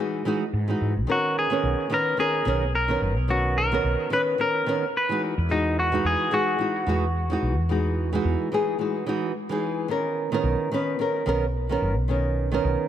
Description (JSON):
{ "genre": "sunset chillout", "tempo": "109 BPM", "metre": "4/4", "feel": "swing 58% on 16ths", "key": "B major", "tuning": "A4 = 440 Hz", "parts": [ { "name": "nylon-string guitar", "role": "accompaniment", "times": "0.0-12.9 s", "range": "D#3 to B4", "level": "-25 LUFS", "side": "moving between left 2 dB and right 5 dB", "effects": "auto-pan, tape echo" }, { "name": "woody fretless electric bass", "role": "bass", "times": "0.5-12.8 s", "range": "F#1 to G#2", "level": "-25 LUFS", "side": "equal", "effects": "none" }, { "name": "semi-hollow electric guitar", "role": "melody", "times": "1.1-9.3 s", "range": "D#4 to B4", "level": "-25 LUFS", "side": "left 1 dB", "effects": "tape echo" } ], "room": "moderate plate reverb, RT60 3.5 s", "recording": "none", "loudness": "-22 LUFS", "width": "side -10 dB against mid", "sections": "0.0-9.9 A section; 9.9-12.9 B section", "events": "break 8.8-9.9", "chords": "0.0 Emaj9; 1.1 Bmaj9; 5.2 Emaj9; 9.9 Bmaj9" }